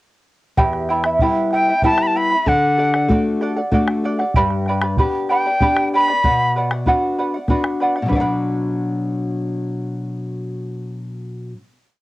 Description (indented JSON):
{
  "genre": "andean folk, Andean ensemble",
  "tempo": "96 BPM",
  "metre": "3/4",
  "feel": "straight",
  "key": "B minor",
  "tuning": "A4 = 437 Hz",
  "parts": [
    { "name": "charango", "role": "accompaniment", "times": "0.6-11.8 s", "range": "E4 to B5", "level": "-20 LUFS", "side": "right 2 dB", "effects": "cassette tape" },
    { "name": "nylon-string guitar", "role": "accompaniment", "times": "0.6-11.7 s", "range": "E2 to B5", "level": "-21 LUFS", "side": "left 2 dB", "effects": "cassette tape" },
    { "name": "bombo", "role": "percussion", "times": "0.6-8.4 s", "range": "none", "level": "-21 LUFS", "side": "right 1 dB", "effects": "none" },
    { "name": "breathy bright quena", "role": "melody", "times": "1.5-6.5 s", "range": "F#5 to B5", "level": "-16 LUFS", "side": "equal", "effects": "cassette tape" }
  ],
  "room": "light reverb",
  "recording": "home recording on cassette",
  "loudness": "-16 LUFS",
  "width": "side -18 dB against mid",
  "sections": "0.6-8.1 A section; 8.1-11.9 final chord",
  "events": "none",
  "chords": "0.6 Em; 2.5 D; 4.4 G; 6.2 Bm"
}